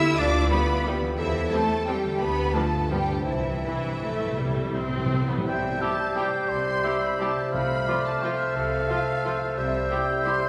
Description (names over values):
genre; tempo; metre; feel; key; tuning
classical; 153-190 BPM; 3/4; rubato; C major; A4 = 439 Hz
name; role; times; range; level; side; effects
warm symphonic violin section; melody; 0.0-10.5 s; E5 to E6; -34 LUFS; equal; none
clear symphonic violin section; second line; 0.0-10.3 s; E4 to E5; -36 LUFS; equal; none
dark French horn section; sustained chords; 0.0-10.4 s; G3 to A4; -36 LUFS; equal; none
concert harp; arpeggios; 0.0-10.5 s; G2 to G4; -36 LUFS; equal; none
clear symphonic cello section; bass; 0.0-9.9 s; C3 to E4; -35 LUFS; equal; none
clear symphonic double bass section; bass; 0.2-9.8 s; C2 to G2; -34 LUFS; equal; none
rich symphonic viola section; accompaniment; 0.5-10.3 s; E3 to F4; -36 LUFS; equal; none
timpani; percussion; 3.3-5.4, 7.5-8.0 s; C3; -34 LUFS; equal; none
bright clarinet; second line; 5.5-10.5 s; C5; -36 LUFS; equal; none
mellow oboe; second line; 5.5-10.5 s; A4 to G5; -33 LUFS; equal; none
silver concert flute; second line; 5.5-10.5 s; F6 to G6; -33 LUFS; equal; none
warm bassoon; accompaniment; 5.5-10.5 s; G3 to A3; -33 LUFS; equal; none
bright trumpet; stabs; 5.8-10.4 s; F4 to G4; -36 LUFS; equal; none
room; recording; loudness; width
wet church reverb, RT60 3.4 s; recorded in a church or concert hall; -25 LUFS; mono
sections
0.0-5.5 A section; 5.5-10.5 B section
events
timpani fill 3.3-5.5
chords
0.0 G7/D; 1.2 C/E; 2.2 Dm; 2.9 G7; 3.3 C; 7.5 F/C; 9.6 C